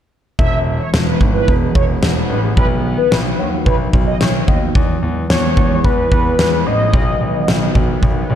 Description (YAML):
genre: synth-pop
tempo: 110 BPM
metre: 4/4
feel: straight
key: E major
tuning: A4 = 435 Hz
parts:
  - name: mellow synth brass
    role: second line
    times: 0.4-4.6 s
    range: B4 to E5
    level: -21 LUFS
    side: equal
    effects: chorus, phaser, digital delay
  - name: sweeping resonant pad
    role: sustained chords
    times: 0.4-8.4 s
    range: D#3 to B3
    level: -22 LUFS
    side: right 2 dB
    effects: chorus
  - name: clear grand piano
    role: bass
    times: 0.4-8.4 s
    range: E1 to E2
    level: -19 LUFS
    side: left 1 dB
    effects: none
  - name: huge arena drum kit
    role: drums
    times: 0.4-8.2 s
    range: kick drum, snare drum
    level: -16 LUFS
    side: equal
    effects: none
  - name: octave-doubled lead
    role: melody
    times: 5.3-7.8 s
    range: B4 to D#5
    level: -19 LUFS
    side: left 1 dB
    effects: chorus, digital delay
room: light reverb, studio ambience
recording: dark, warm production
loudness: -13 LUFS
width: side -10 dB against mid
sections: 0.4-4.8 A section; 4.8-8.4 B section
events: none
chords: 0.4 E; 2.6 B; 4.8 E; 6.9 B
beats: | 0.39 0.93 1.48 2.02 | 2.57 3.12 3.66 4.21 | 4.75 5.30 5.84 6.39 | 6.93 7.48 8.03